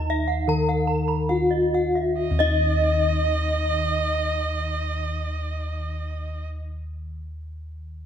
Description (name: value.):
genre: Balinese gamelan.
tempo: 64-81 BPM.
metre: 4/4.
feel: straight.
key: unclear.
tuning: A4 = 440 Hz.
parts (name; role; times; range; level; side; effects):
gamelan-type bronze metallophone; melody; 0.0-6.7 s; Eb4 to Bb4-45c; -26 LUFS; left 1 dB; none.
gamelan-type bronze metallophone; arpeggios; 0.0-6.7 s; Eb5 to Cb6-40c; -30 LUFS; right 5 dB; none.
gamelan-type bossed gongs; bass; 0.0-6.6 s; Eb2 to Fb4; -26 LUFS; left 1 dB; none.
gamelan-type bronze metallophone; arpeggios; 0.1-6.7 s; Eb5 to Bb5-45c; -28 LUFS; left 6 dB; none.
rich erhu; second line; 2.2-6.5 s; Eb5; -29 LUFS; right 4 dB; none.
room: moderate recital hall reverb, RT60 1.5 s.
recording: none.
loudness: -21 LUFS.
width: side -9 dB against mid.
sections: 0.0-2.2 A section; 2.2-8.1 B section.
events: slowing down 0.0-2.2.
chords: none.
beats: 0.48 1.30 | 2.19 3.13 4.07 5.01 | 5.95.